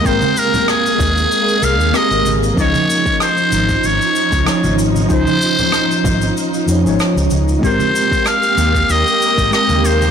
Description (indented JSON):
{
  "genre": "sunset chillout",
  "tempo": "95 BPM",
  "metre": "4/4",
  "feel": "swing 53% on 16ths",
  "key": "Ab major",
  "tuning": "A4 = 441 Hz",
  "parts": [
    { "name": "trumpet with metal mute", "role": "melody", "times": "0.0-10.1 s", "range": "Ab4 to F5", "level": "-16 LUFS", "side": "left 1 dB", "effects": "ping-pong delay" },
    { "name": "mellow tine electric piano", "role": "accompaniment", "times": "0.0-10.1 s", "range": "F3 to G5", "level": "-19 LUFS", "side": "right 1 dB", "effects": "medium stereo tremolo, auto-pan, low-pass filter, ping-pong delay" },
    { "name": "soft string machine", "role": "sustained chords", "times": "0.0-10.1 s", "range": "F3 to G4", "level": "-20 LUFS", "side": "right 1 dB", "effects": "ensemble chorus" },
    { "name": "overdriven fingered electric bass", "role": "bass", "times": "0.0-10.1 s", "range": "Ab1 to F2", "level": "-18 LUFS", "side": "equal", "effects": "none" },
    { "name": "electronic kick drum", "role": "drums", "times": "0.0-9.5 s", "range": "none", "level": "-21 LUFS", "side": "equal", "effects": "none" },
    { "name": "cabasa and rim click", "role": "drums", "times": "0.1-10.1 s", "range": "none", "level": "-24 LUFS", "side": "left 1 dB", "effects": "soft clipping on snare" },
    { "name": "congas", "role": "percussion", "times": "0.2-10.1 s", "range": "none", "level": "-26 LUFS", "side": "left 2 dB", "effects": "none" }
  ],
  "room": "moderate concert hall reverb, RT60 1.9 s",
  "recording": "blown-out, overdriven recording, overdrive",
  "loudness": "-12 LUFS",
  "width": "side -8 dB against mid",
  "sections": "0.0-10.1 A section",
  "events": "none",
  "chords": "0.0 Abmaj9; 2.6 Dbmaj9; 7.6 Abmaj9",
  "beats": "| 0.05 0.68 1.31 1.95 | 2.58 3.21 3.84 4.47 | 5.10 5.74 6.37 7.00 | 7.63 8.26 8.89 9.53"
}